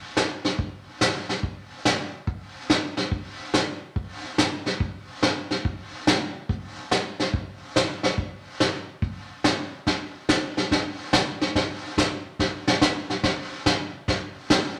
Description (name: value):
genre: country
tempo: 142 BPM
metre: 4/4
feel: swing 66% on 8ths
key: none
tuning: none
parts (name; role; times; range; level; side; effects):
- vintage brush drum kit; drums; 0.2-14.8 s; brushed snare drum, hi-hat, kick drum, snare drum; -26 LUFS; equal; none
room: wet studio reverb, RT60 0.9 s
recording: none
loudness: -26 LUFS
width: mono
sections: 0.0-9.9 A section; 9.9-14.8 B section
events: none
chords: none